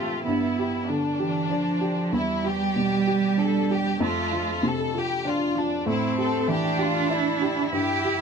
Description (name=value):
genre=neoclassical piano and strings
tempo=96 BPM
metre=3/4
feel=rubato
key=A minor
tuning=A4 = 439 Hz
part: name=rich chamber violin section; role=melody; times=0.0-8.2 s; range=D4 to A4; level=-28 LUFS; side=left 3 dB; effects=none
part: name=rich cello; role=second line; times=0.0-8.2 s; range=E3 to E4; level=-25 LUFS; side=right 5 dB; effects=none
part: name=warm upright piano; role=accompaniment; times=0.0-8.2 s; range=E2 to G4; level=-27 LUFS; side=equal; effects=none
room=light reverb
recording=close, detailed microphones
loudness=-22 LUFS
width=side -6 dB against mid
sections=0.0-8.2 A section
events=none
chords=0.2 G7; 2.1 Em7; 4.0 Dm7/F; 5.9 Am7